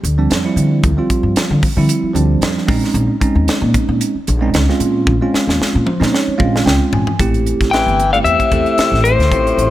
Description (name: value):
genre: electric jazz fusion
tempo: 113 BPM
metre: 4/4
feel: swing 55% on 16ths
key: unclear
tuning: A4 = 440 Hz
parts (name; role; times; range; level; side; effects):
- upright bass; bass; 0.0-9.7 s; G1 to D3; -17 LUFS; equal; none
- crisp fusion drum kit; drums; 0.0-9.7 s; hi-hat, kick drum, snare drum, toms; -19 LUFS; equal; none
- bell-like tine electric piano; accompaniment; 0.2-9.7 s; F3 to Ab5; -17 LUFS; right 3 dB; phaser
- lightly driven lead guitar; melody; 7.7-9.7 s; C5 to G5; -14 LUFS; left 4 dB; none
- clear tenor saxophone; second line; 7.7-9.7 s; A2 to E3; -20 LUFS; left 3 dB; none
room: light reverb, small room ambience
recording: none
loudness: -12 LUFS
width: side -14 dB against mid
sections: 0.0-7.2 A section; 7.2-9.7 B section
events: drum fill 5.1-7.2; tine electric piano fill 5.6-7.2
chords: 0.0 Dm11; 2.7 Bbm11; 7.2 Am7